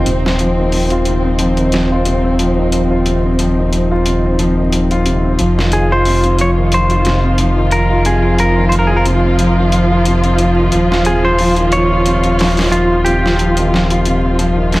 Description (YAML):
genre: trip hop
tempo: 90 BPM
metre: 4/4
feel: swing 55% on 16ths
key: unclear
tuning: A4 = 440 Hz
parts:
  - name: dark chamber string section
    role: sustained chords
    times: 0.0-14.8 s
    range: F3 to F4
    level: -18 LUFS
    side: equal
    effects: none
  - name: felt-muted upright piano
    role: arpeggios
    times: 0.0-14.8 s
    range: C3 to F4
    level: -17 LUFS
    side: left 1 dB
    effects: vintage 12-bit sampler grit, low-pass filter, tape echo
  - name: round analog bass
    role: bass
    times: 0.0-14.8 s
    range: Eb1 to F1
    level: -16 LUFS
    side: equal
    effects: none
  - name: bowed-like drone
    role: texture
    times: 0.0-14.8 s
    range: Eb4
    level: -27 LUFS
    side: right 1 dB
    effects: none
  - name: boom bap sampler-style drum kit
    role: drums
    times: 0.1-14.8 s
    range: hi-hat, snare drum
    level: -21 LUFS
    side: equal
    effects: high-pass filter on hats, studio ambience, high-pass filter on snare
  - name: semi-hollow electric guitar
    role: melody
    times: 5.7-14.8 s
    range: F4 to Db5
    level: -18 LUFS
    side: equal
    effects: tape echo
room: light reverb, digital ambience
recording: vinyl crackle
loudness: -11 LUFS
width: side -19 dB against mid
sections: 0.0-14.8 A section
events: filter sweep on felt piano 0.0-14.8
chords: 0.1 Cmadd11/Eb; 5.4 F5; 10.7 Eb7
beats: | 0.06 0.72 1.39 2.06 | 2.72 3.39 4.06 4.72 | 5.39 6.06 6.72 7.39 | 8.06 8.72 9.39 10.06 | 10.72 11.39 12.06 12.72 | 13.39 14.06 14.72